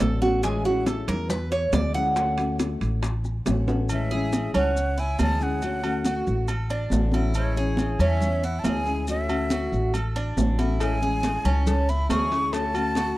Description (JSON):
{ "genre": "latin, Cuban son and guajira", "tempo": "139 BPM", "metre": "4/4", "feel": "straight", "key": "A major", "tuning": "A4 = 441 Hz", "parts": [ { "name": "nylon-string guitar", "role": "accompaniment", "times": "0.0-13.2 s", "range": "D3 to F#4", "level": "-30 LUFS", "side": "left 4 dB", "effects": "none" }, { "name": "Cuban tres", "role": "arpeggios", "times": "0.0-13.2 s", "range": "C#4 to F#5", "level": "-28 LUFS", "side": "right 2 dB", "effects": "none" }, { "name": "upright bass", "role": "bass", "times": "0.0-13.1 s", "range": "A1 to E2", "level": "-26 LUFS", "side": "equal", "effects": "none" }, { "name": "bongos and cowbell", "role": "percussion", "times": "0.0-3.9, 10.8-13.2 s", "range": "none", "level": "-34 LUFS", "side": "left 6 dB", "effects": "none" }, { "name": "congas", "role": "percussion", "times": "0.0-13.2 s", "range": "none", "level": "-30 LUFS", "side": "equal", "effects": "none" }, { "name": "maracas", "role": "percussion", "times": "0.0-13.2 s", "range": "none", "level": "-41 LUFS", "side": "left 3 dB", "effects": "none" }, { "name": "timbales and agogo bells", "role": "percussion", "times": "0.0-13.2 s", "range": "none", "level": "-32 LUFS", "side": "right 4 dB", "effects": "none" }, { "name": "breathy jazz flute", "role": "melody", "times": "3.9-13.2 s", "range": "C#5 to C#6", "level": "-29 LUFS", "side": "right 1 dB", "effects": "none" } ], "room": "small room ambience", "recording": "dry, close 1970s-style studio recording", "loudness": "-22 LUFS", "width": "side -17 dB against mid", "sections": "0.0-3.9 A section; 3.9-13.2 B section", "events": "Cuban tres solo 0.0-3.9; drum fill 3.7", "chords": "0.4 Amaj7; 2.2 Dmaj7; 3.9 Amaj7; 5.6 Dmaj7; 7.3 Amaj7; 9.1 Dmaj7; 10.8 Amaj7; 12.5 Dmaj7" }